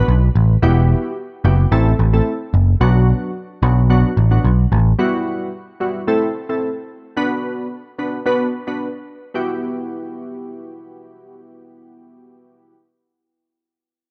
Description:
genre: afrobeats.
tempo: 110 BPM.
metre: 4/4.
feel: straight.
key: E minor.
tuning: A4 = 439 Hz.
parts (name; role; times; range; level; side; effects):
glassy digital keys; accompaniment; 0.0-12.7 s; F#3 to B4; -23 LUFS; equal; chorus.
picked electric bass; bass; 0.1-4.9 s; E1 to B1; -15 LUFS; equal; none.
room: digital ambience.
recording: dark, warm production, nothing above 10.8 kHz.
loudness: -17 LUFS.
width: mono.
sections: 0.6-9.4 A section; 9.4-13.7 B section.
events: none.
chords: 0.0 Bm; 0.6 Emadd9; 1.7 Am; 2.8 Bm; 5.0 Emadd9; 6.1 Am; 7.2 Bm; 9.4 Emadd9.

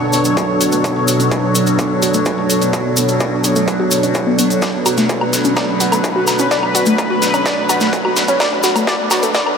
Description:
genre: melodic techno.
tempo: 127 BPM.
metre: 4/4.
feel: straight.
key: B minor.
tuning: A4 = 440 Hz.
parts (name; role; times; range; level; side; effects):
sweeping resonant pad; sustained chords; 0.0-9.6 s; B2 to C#5; -18 LUFS; right 1 dB; chorus, sidechain pumping.
warbly dusty pluck; arpeggios; 0.0-9.4 s; A3 to D5; -19 LUFS; equal; chorus, sidechain pumping, tape echo.
overtone-sweeping drone; drone; 0.0-9.6 s; B2 to F#3; -24 LUFS; equal; chorus, built-in reverb, phaser, sidechain pumping.
deep dark ambient pad; texture; 0.0-9.6 s; D4 to B5; -23 LUFS; left 1 dB; chorus, built-in reverb, sidechain pumping.
techno drum kit; drums; 0.1-9.6 s; hi-hat, snare drum, toms, woodblock; -21 LUFS; left 1 dB; sidechain pumping on toms, high-pass filter on toms, sidechain pumping on hats, high-pass filter on hats, high-pass filter on snare, sidechain pumping on perc, high-pass filter on perc, high-pass filter on room.
cabasa; percussion; 0.1-9.4 s; none; -24 LUFS; left 1 dB; none.
electronic kick drum; drums; 0.4-9.4 s; none; -23 LUFS; equal; distortion, high-pass filter on kick, high-pass filter on room.
room: wet huge ambient reverb, RT60 7.9 s.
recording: dreamy mix soaked in reverb, high-pass filter.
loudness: -13 LUFS.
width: side -6 dB against mid.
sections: 0.0-9.6 A section.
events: build-up 0.0-9.6; filter sweep on synth arpeggio sound 0.0-9.6; drum fill 4.6-9.6.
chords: 0.0 Bm7.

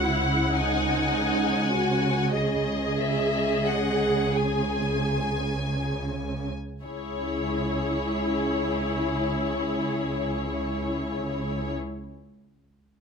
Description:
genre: classical, slow romantic movement for string orchestra.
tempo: 22-38 BPM (dotted quarters).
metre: 12/8.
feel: rubato.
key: C# minor.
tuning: A4 = 440 Hz.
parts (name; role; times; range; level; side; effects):
rich studio violin section; melody; 0.0-11.7 s; C#5 to G#5; -32 LUFS; left 3 dB; none.
warm studio violin section; second line; 0.0-11.7 s; G#4 to G#5; -32 LUFS; left 3 dB; none.
warm studio viola section; accompaniment; 0.0-11.7 s; D#4 to G#4; -29 LUFS; equal; none.
rich studio double bass section; bass; 0.0-11.7 s; C#2; -30 LUFS; right 2 dB; none.
warm studio cello section; bass; 0.0-11.7 s; C#3; -31 LUFS; right 2 dB; none.
room: light reverb.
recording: minimal, uncompressed stereo recording.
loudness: -24 LUFS.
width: side -6 dB against mid.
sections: 0.0-6.8 A section; 6.8-13.0 B section.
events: slowing down 0.0-6.8.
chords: 0.0 G#5/C#; 6.8 C#m.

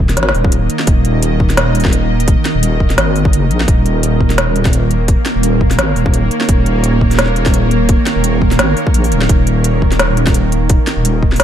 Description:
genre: half-time drum and bass.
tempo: 171 BPM.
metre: 4/4.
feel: swing 56% on 16ths, half-time.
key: unclear.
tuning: A4 = 439 Hz.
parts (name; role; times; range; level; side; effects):
bowed-like drone; sustained chords; 0.0-11.4 s; Eb3 to Eb5; -17 LUFS; right 2 dB; built-in reverb, sidechain pumping.
deep soft wobble bass; bass; 0.0-11.4 s; Eb1 to Bb1; -14 LUFS; equal; chorus, tube saturation.
electronic kick drum; drums; 0.0-11.3 s; none; -13 LUFS; equal; none.
organic electronic drum kit; drums; 0.1-11.4 s; hi-hat, snare drum; -17 LUFS; equal; none.
room: light reverb.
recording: none.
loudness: -10 LUFS.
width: side -10 dB against mid.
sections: 0.0-11.4 A section.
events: kick drops out 8.9-9.3.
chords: 0.0 Eb5.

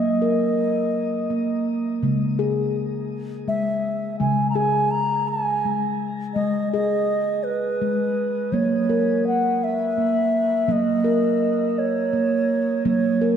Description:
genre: world meditative, meditative tuned percussion.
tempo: 55 BPM (dotted quarters).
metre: 6/8.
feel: straight.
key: unclear.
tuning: A4 = 439 Hz.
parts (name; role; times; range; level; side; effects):
bright bass bansuri; melody; 0.0-13.3 s; B4 to A#5; -23 LUFS; right 1 dB; shimmer reverb.
steel tongue drum; arpeggios; 0.0-13.4 s; C#3 to A#4; -22 LUFS; equal; shimmer reverb.
room: wet concert hall reverb, RT60 1.8 s, studio reverb.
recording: dark, warm production.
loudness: -20 LUFS.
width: side -8 dB against mid.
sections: 0.0-10.7 A section; 10.7-13.4 B section.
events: none.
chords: 0.0 F#; 2.0 C#5; 6.4 G#m; 8.5 F#.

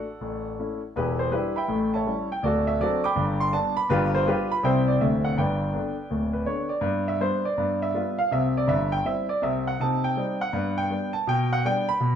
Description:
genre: jazz, stride piano.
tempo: 163 BPM.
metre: 4/4.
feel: swing 65% on 8ths.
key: G major.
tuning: A4 = 440 Hz.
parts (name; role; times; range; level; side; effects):
clear concert grand piano; solo; 0.0-12.2 s; D1 to D6; -23 LUFS; equal; none.
room: wet studio reverb, RT60 0.7 s.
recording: heard from further back in the room.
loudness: -23 LUFS.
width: side -8 dB against mid.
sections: 0.0-6.8 A section; 6.8-12.2 B section.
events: none.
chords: 0.2 A; 1.0 Em7; 1.7 A7; 2.4 D7; 3.2 G; 3.9 G5; 4.6 C; 5.0 D7; 5.4 G; 7.6 G7; 8.3 C; 9.8 Cm; 10.5 G; 11.3 G/B.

